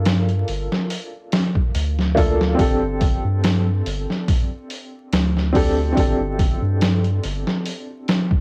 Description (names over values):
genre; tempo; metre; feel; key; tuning
trip hop; 71 BPM; 4/4; swing 54% on 16ths; G minor; A4 = 437 Hz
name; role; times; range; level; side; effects
warm upright piano; accompaniment; 0.0-8.4 s; Bb3 to A4; -26 LUFS; equal; tremolo, cassette tape, tape echo
soft dub sub bass; bass; 0.0-7.4 s; G1 to G2; -24 LUFS; equal; tube saturation
trip hop sampler-style drum kit; drums; 0.1-8.4 s; hi-hat, kick drum, snare drum; -22 LUFS; equal; cassette tape
room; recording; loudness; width
light reverb; home recording on cassette, vinyl crackle; -20 LUFS; mono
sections
0.0-8.4 A section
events
none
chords
0.0 Gm7; 2.6 Gsus24